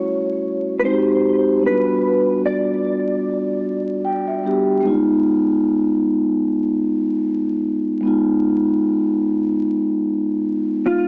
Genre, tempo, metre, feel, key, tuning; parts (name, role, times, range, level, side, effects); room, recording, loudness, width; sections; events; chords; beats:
lo-fi hip hop; 75 BPM; 4/4; swing 61% on 16ths; A4 = 440 Hz
mellow electric guitar; melody; 0.0-4.4, 10.9-11.1 s; E#4 to D5; -24 LUFS; equal; ensemble chorus, low-pass filter
vibraphone with soft mallets; accompaniment; 0.0-11.1 s; G3 to G5; -20 LUFS; equal; low-pass filter
wet spring reverb, RT60 2.3 s; home recording on cassette, vinyl crackle, small speaker sound; -19 LUFS; mono
0.0-11.1 A section
vibraphone fill 3.6-4.8
0.0 F#m7; 0.8 G#maj7; 1.6 Gmaj7; 4.8 G#m6
0.03 0.83 | 1.63 2.43 3.23 4.03 | 4.83 5.63 6.43 7.23 | 8.03 8.83 9.63 10.43